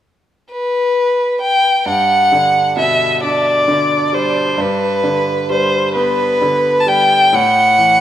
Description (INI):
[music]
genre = six-eight pop ballad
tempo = 44 BPM (dotted quarters)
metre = 6/8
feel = straight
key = G major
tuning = A4 = 440 Hz
[part]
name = warm violin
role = melody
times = 0.5-8.0 s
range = B4 to A5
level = -12 LUFS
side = left 1 dB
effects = none
[part]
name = bright concert grand piano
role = accompaniment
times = 1.9-8.0 s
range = G2 to D4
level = -19 LUFS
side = right 2 dB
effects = none
[sound]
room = wet lush hall reverb, RT60 2.4 s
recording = rough home demo mix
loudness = -12 LUFS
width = side -11 dB against mid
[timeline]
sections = 0.0-1.9 A section; 1.9-8.0 B section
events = none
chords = 0.0 N.C.; 1.9 G; 7.3 A5